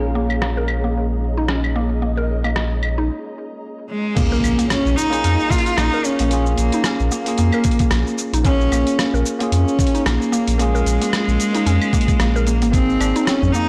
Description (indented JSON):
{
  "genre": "organic downtempo",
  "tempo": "112 BPM",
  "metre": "4/4",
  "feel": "swing 56% on 16ths",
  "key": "Bb minor pentatonic",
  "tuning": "A4 = 440 Hz",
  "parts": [
    { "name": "bell-like tine electric piano", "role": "accompaniment", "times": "0.0-13.7 s", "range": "Bb3 to Ab4", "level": "-28 LUFS", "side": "equal", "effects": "sidechain pumping, tape echo" },
    { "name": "granular cloud pad", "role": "sustained chords", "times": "0.0-3.1 s", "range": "Ab4 to Bb5", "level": "-32 LUFS", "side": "equal", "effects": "built-in reverb, sidechain pumping" },
    { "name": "mallet-like synth pluck", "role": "arpeggios", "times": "0.0-13.7 s", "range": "Bb3 to Bb4", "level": "-28 LUFS", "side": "equal", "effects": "chorus, tape echo" },
    { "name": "warm sub bass", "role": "bass", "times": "0.0-13.5 s", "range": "Ab1 to F2", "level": "-22 LUFS", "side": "equal", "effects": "none" },
    { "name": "dusty soul sampler-style drum kit", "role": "drums", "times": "0.3-13.7 s", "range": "cabasa, claves, crash cymbal, hi-hat, rim click", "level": "-28 LUFS", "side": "equal", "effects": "low-pass filter on perc, soft clipping on snare, low-pass filter on snare, low-pass filter on hats, low-pass filter on cymbals" },
    { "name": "clear cello", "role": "melody", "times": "3.9-13.7 s", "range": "Ab3 to F4", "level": "-23 LUFS", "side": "equal", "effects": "tape echo" },
    { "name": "electronic kick drum", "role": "drums", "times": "4.2-12.9 s", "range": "none", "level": "-21 LUFS", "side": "equal", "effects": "none" },
    { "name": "impact", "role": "sound effects", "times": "4.2-6.3 s", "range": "none", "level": "-29 LUFS", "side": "equal", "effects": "none" },
    { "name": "tabla", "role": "percussion", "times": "13.0-13.5 s", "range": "none", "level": "-24 LUFS", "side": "equal", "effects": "none" }
  ],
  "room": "moderate scoring stage reverb, RT60 1.7 s",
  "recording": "blown-out, overdriven recording, overdrive",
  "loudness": "-18 LUFS",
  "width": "mono",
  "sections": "0.0-4.2 A section; 4.2-13.7 B section",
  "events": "break 3.1-4.2; impact 4.2-6.3",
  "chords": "0.0 Bbm7; 12.7 Abadd9"
}